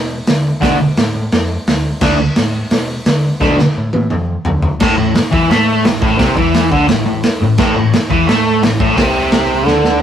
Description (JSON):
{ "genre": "garage rock duo or trio", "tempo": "172 BPM", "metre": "4/4", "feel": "straight", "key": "A minor", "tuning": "A4 = 440 Hz", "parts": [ { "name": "overdriven picked electric bass", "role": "bass", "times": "0.0-10.0 s", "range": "A1 to D3", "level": "-19 LUFS", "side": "equal", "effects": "none" }, { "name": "raw garage drum kit", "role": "drums", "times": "0.3-9.9 s", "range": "crash cymbal, hi-hat, kick drum, snare drum, toms", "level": "-15 LUFS", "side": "equal", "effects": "none" }, { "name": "fuzz guitar", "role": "riff", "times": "0.6-10.0 s", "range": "A2 to D4", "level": "-13 LUFS", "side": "equal", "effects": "distortion" } ], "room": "light reverb", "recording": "rough rehearsal-room recording", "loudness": "-11 LUFS", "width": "side -9 dB against mid", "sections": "0.0-4.8 A section; 4.8-10.0 B section", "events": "drum fill 3.4-4.8, 9.7-10.0", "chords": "0.0 D5; 4.8 Am", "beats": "0.28 | 0.63 0.98 1.33 1.68 | 2.03 2.38 2.72 3.07 | 3.42 3.77 4.12 4.46 | 4.81 5.16 5.51 5.86 | 6.20 6.55 6.90 7.25 | 7.59 7.94 8.29 8.64 | 8.98 9.33 9.68" }